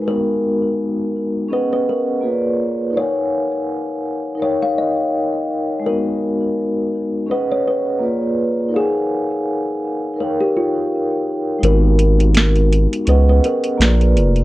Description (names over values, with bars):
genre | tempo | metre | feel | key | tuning
lo-fi hip hop | 83 BPM | 4/4 | swing 56% on 16ths | G# dorian | A4 = 441 Hz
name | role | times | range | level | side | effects
vibraphone with soft mallets | accompaniment | 0.0-14.4 s | G#3 to G#5 | -20 LUFS | equal | cassette tape, low-pass filter, plate reverb
kalimba | melody | 0.1-14.0 s | E#4 to E#5 | -21 LUFS | left 1 dB | low-pass filter, analog delay, plate reverb
saturated sub bass | bass | 11.6-14.4 s | E#1 to C#2 | -13 LUFS | equal | none
booming analog drum machine | drums | 11.6-14.4 s | hi-hat, snare drum | -19 LUFS | equal | none
room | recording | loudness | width
light reverb | cassette tape | -16 LUFS | side -17 dB against mid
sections
0.1-11.6 A section; 11.6-14.4 B section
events
kick muted 11.6-14.4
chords
0.0 G#m9; 1.5 C#7sus4; 2.2 A#7b9; 2.9 D#m11; 4.4 D#9; 5.8 G#m9; 7.3 C#7sus4; 8.0 A#7b9; 8.7 D#m11; 10.2 D#9; 11.6 G#m9; 13.1 C#7sus4; 13.8 A#7b9